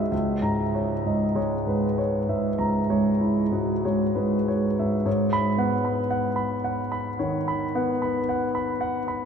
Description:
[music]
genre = classical, impressionist solo piano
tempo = 47-59 BPM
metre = 4/4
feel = rubato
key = unclear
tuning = A4 = 440 Hz
[part]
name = warm concert grand piano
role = solo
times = 0.0-9.3 s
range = C#2 to D#7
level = -22 LUFS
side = equal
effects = none
[sound]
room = wet cathedral reverb, RT60 6.3 s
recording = in a vast, echoing space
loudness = -22 LUFS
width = side -7 dB against mid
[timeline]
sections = 0.0-5.1 A section; 5.1-9.3 B section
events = none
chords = 0.1 C#m6; 5.1 G#m7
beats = | 0.12 1.35 2.60 3.85 | 5.06 6.11 7.20 8.28

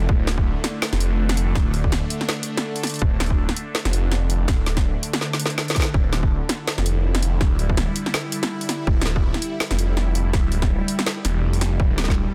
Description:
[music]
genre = half-time drum and bass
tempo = 164 BPM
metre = 4/4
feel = swing 57% on 16ths, half-time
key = D minor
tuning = A4 = 440 Hz
[part]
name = bowed-like drone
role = sustained chords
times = 0.0-12.3 s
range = D3 to A4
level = -31 LUFS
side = equal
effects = built-in reverb, phaser, sidechain pumping
[part]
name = phased detuned saw bass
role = bass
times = 0.0-12.3 s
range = D1 to F1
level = -24 LUFS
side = equal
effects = phaser
[part]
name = electronic kick drum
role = drums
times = 0.1-12.1 s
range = none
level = -23 LUFS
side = equal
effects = small room ambience
[part]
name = drum and bass drum kit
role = drums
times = 0.3-12.2 s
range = hi-hat, snare drum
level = -28 LUFS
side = equal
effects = overdrive, small room ambience
[sound]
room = light reverb, digital ambience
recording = dense, heavily limited modern master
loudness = -22 LUFS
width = mono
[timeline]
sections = 0.0-12.3 A section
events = drum fill 5.2-5.9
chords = 0.0 Dm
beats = | 0.09 0.46 0.82 1.19 | 1.55 1.92 2.29 2.65 | 3.02 3.38 3.75 4.11 | 4.48 4.85 5.21 5.58 | 5.94 6.31 6.67 7.04 | 7.41 7.77 8.14 8.51 | 8.87 9.24 9.60 9.97 | 10.33 10.70 11.07 11.43 | 11.80 12.16

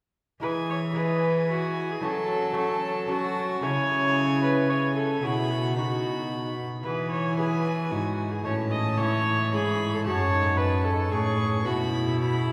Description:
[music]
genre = classical, renaissance-style consort dance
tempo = 112 BPM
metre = 3/4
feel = straight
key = E major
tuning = A4 = 439 Hz
[part]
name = rich violin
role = melody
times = 0.4-12.5 s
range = G#5 to C#6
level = -38 LUFS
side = equal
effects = none
[part]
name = warm viola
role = second line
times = 0.4-12.5 s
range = E4 to D#5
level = -30 LUFS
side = equal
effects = none
[part]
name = lute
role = accompaniment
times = 0.4-12.5 s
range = F#2 to G#4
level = -36 LUFS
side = equal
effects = none
[part]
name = warm trombone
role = accompaniment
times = 0.4-12.5 s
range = C#4 to F#4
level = -37 LUFS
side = equal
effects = none
[part]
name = rich cello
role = bass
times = 0.4-12.5 s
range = F#2 to F#3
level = -30 LUFS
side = equal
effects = none
[sound]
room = wet cathedral reverb, RT60 4.6 s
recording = heard from further back in the room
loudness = -26 LUFS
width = mono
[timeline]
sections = 0.4-12.5 A section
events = none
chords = 0.4 E; 2.0 F#m; 3.6 C#m; 5.2 Bsus4; 5.8 B; 6.9 E; 8.5 A; 10.1 F#m; 11.7 Bsus4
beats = | 0.43 0.97 1.50 | 2.04 2.57 3.10 | 3.64 4.17 4.70 | 5.24 5.78 6.32 | 6.86 7.39 7.93 | 8.46 9.00 9.53 | 10.06 10.60 11.13 | 11.66 12.20

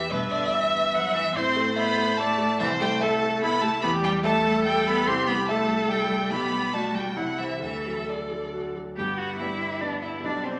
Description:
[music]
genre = quick classical-period movement for piano quartet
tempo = 144 BPM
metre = 3/4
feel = rubato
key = G major from 3.8 s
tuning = A4 = 440 Hz
[part]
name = warm violin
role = melody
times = 0.0-10.6 s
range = B4 to C6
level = -31 LUFS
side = equal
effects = none
[part]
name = warm cello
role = second line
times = 0.0-10.6 s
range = B2 to G4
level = -32 LUFS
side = equal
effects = none
[part]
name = dark baby grand piano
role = accompaniment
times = 0.0-10.6 s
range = G1 to E5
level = -32 LUFS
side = equal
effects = none
[part]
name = warm viola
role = accompaniment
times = 0.0-10.6 s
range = G3 to E5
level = -30 LUFS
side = equal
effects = none
[sound]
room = wet recital hall reverb, RT60 1.4 s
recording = none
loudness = -25 LUFS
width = mono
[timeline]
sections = 0.0-9.0 A section; 9.0-10.6 B section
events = none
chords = 0.1 Em/G; 1.4 Am; 2.6 Am/C; 3.8 Em; 5.1 C; 6.3 G/B; 7.2 C; 7.6 D; 9.0 G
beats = | 0.11 0.54 0.96 | 1.37 1.78 2.19 | 2.61 3.02 3.42 | 3.83 4.24 4.65 | 5.07 5.49 5.90 | 6.32 6.74 7.17 | 7.62 8.07 8.53 | 8.97 9.40 9.81 | 10.23

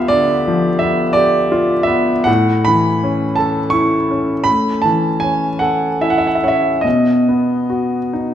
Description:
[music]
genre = classical, romantic nocturne for solo piano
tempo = 45-58 BPM (dotted quarters)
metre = 12/8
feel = rubato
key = unclear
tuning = A4 = 440 Hz
[part]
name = clear grand piano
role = solo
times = 0.0-8.3 s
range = A2 to C#6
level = -13 LUFS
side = equal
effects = none
[sound]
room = wet recital hall reverb, RT60 1.3 s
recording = none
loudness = -13 LUFS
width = side -10 dB against mid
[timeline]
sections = 0.0-8.3 A section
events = none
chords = 0.0 G7/D; 2.3 A; 6.8 B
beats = 0.11 1.15 | 2.27 3.38 4.47 5.63 | 6.85 8.14

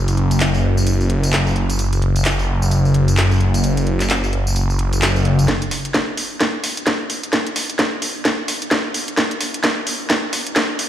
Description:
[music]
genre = bass house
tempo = 130 BPM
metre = 4/4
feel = swing 59% on 16ths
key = unclear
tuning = A4 = 439 Hz
[part]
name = phased detuned saw bass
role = bass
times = 0.0-5.5 s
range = F#1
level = -15 LUFS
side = equal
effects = phaser, tube saturation, sidechain pumping
[part]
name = garage drum kit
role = drums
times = 0.1-10.9 s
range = handclaps, hi-hat, snare drum, tambourine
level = -20 LUFS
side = equal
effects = high-pass filter on hats, high-pass filter on perc, high-pass filter on snare, high-pass filter on room
[part]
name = electronic kick drum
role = drums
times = 5.5-10.7 s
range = none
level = -24 LUFS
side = equal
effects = high-pass filter on kick, high-pass filter on room
[sound]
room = light reverb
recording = played on a big sound system in a bare room, large studio reverb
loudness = -16 LUFS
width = side -11 dB against mid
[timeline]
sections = 0.0-5.5 A section; 5.5-10.9 B section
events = build-up 5.5-10.9; drum fill 5.5-10.9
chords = none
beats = 0.41 0.87 1.33 | 1.79 2.25 2.71 3.17 | 3.64 4.10 4.56 5.02 | 5.48 5.94 6.41 6.87 | 7.33 7.79 8.25 8.71 | 9.18 9.64 10.10 10.56

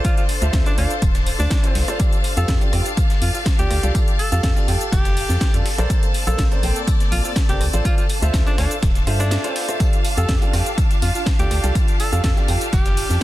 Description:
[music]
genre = piano house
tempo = 123 BPM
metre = 4/4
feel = straight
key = F major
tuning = A4 = 438 Hz
[part]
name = clear alto saxophone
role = melody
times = 0.0-13.2 s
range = D4 to A4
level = -29 LUFS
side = equal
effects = ping-pong delay
[part]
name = string machine, violins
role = sustained chords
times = 0.0-13.2 s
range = F4 to A5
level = -32 LUFS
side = right 1 dB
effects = ensemble chorus, sidechain pumping
[part]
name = clear upright piano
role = riff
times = 0.0-12.6 s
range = F4 to G5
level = -28 LUFS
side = right 2 dB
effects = sidechain pumping, ping-pong delay
[part]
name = breakbeat sampler-style drum kit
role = drums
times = 0.0-13.1 s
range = hi-hat, snare drum, tambourine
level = -34 LUFS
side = left 1 dB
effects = high-pass filter on perc, high-pass filter on snare, high-pass filter on hats
[part]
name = electronic kick drum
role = drums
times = 0.0-12.8 s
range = none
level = -19 LUFS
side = equal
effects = overdrive
[part]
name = house drum kit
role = drums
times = 0.0-13.2 s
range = hi-hat, rim click, shaker, snare drum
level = -28 LUFS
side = equal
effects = overdrive
[part]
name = rich symphonic string section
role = texture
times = 0.0-13.2 s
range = Bb3 to A5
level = -29 LUFS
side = left 2 dB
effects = sidechain pumping
[part]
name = organ-like FM bass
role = bass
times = 0.4-13.2 s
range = D1 to G2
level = -20 LUFS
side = equal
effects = sidechain pumping
[part]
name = tambourine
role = percussion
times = 9.8-13.2 s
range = none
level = -39 LUFS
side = right 3 dB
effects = none
[sound]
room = digital ambience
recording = dense, heavily limited modern master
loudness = -16 LUFS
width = side -16 dB against mid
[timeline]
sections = 0.0-13.2 A section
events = break 9.3-9.8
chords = 0.0 Dm7; 2.0 F69; 5.7 Bbmaj9; 7.6 Dm7; 9.8 F69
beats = | 0.05 0.53 1.02 1.51 | 2.00 2.48 2.97 3.46 | 3.95 4.44 4.92 5.41 | 5.90 6.39 6.88 7.36 | 7.85 8.34 8.83 9.31 | 9.80 10.29 10.78 11.27 | 11.75 12.24 12.73 13.22

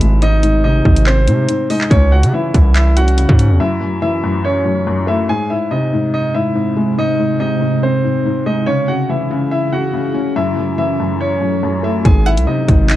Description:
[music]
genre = hip hop, drill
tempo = 142 BPM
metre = 4/4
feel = half-time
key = unclear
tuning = A4 = 444 Hz
[part]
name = clear concert grand piano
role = melody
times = 0.0-13.0 s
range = B#3 to G#5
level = -19 LUFS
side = right 1 dB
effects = low-pass filter
[part]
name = felt-muted upright piano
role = accompaniment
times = 0.0-13.0 s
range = F#2 to C#4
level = -18 LUFS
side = left 3 dB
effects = low-pass filter
[part]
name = distorted 808-style bass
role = bass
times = 0.0-3.6, 12.1-13.0 s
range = G#1 to C#3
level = -12 LUFS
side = equal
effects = distortion
[part]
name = drill drum kit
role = drums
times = 0.0-3.5, 12.1-13.0 s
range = handclaps, hi-hat, kick drum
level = -14 LUFS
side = equal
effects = vintage 12-bit sampler grit
[part]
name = ethereal airy pad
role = sustained chords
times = 6.2-13.0 s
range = B#2 to A4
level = -21 LUFS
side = right 2 dB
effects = ensemble chorus, built-in reverb
[part]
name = string-like resonator pluck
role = second line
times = 12.3-12.5 s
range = F#5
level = -25 LUFS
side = right 6 dB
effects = chorus, tape echo
[sound]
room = little or no reverb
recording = dark, warm production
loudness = -12 LUFS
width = side -14 dB against mid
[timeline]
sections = 0.0-5.3 A section; 5.3-13.0 B section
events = break 3.6-5.3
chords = 0.0 G#; 1.9 C#m; 3.6 F#m7; 5.3 G#; 8.7 C#m; 10.4 F#m7; 12.1 G#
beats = | 0.22 0.64 1.06 1.49 | 1.91 2.33 2.75 3.18 | 3.60 4.02 4.45 4.87 | 5.29 5.71 6.13 6.56 | 6.98 7.40 7.83 8.25 | 8.67 9.09 9.52 9.94 | 10.36 10.78 11.21 11.63 | 12.05 12.47 12.90

